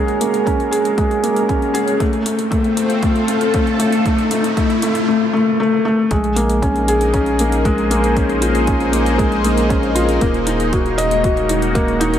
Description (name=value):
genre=piano and strings electronica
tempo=117 BPM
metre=4/4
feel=straight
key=Bb minor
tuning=A4 = 442 Hz
part: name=lush unison pad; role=sustained chords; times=0.0-12.2 s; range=Ab3 to C5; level=-22 LUFS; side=left 1 dB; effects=chorus, phaser, sidechain pumping
part: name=felt-muted upright piano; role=riff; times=0.0-12.2 s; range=Ab3 to Eb5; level=-16 LUFS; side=left 1 dB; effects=digital delay
part: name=round analog bass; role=bass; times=0.0-12.2 s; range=Eb1 to Bb1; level=-21 LUFS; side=equal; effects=sidechain pumping, high-pass filter
part: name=riser and swell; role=sound effects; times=1.7-6.1 s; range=none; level=-27 LUFS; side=right 1 dB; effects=none
part: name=electronic hi-hat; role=drums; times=0.1-12.2 s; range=none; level=-28 LUFS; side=left 1 dB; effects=none
part: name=electronic kick drum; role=drums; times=0.5-11.9 s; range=none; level=-20 LUFS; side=equal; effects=none
room=moderate lush hall reverb, RT60 1.9 s, digital ambience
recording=none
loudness=-14 LUFS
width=side -10 dB against mid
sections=0.0-6.1 A section; 6.1-12.2 B section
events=build-up 0.0-6.1; filter sweep on analog synth pad 0.0-6.1; riser 1.7-5.1; swell 5.1-6.1; drop 6.1-12.2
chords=0.0 Gbadd9; 2.0 F; 6.1 Bbm7; 10.2 Ebm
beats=0.47 0.98 1.50 | 2.01 2.52 3.03 3.55 | 4.06 4.57 5.09 5.60 | 6.11 6.62 7.14 7.65 | 8.16 8.68 9.19 9.70 | 10.21 10.73 11.24 11.75